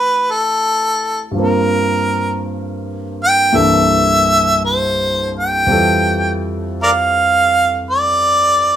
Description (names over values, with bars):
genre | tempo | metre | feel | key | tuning
jazz | 56 BPM | 4/4 | swing 68% on 8ths | unclear | A4 = 440 Hz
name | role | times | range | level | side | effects
warm harmonica | melody | 0.0-8.8 s | A4 to G5 | -13 LUFS | equal | none
warm grand piano | accompaniment | 0.0-8.8 s | C2 to B4 | -19 LUFS | equal | none
room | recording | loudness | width
light reverb | minimal, uncompressed stereo recording, faint mains hum | -12 LUFS | side -10 dB against mid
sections
0.0-8.8 A section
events
none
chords
0.0 Am11; 1.4 Gm7; 3.5 C13; 5.7 Fmaj9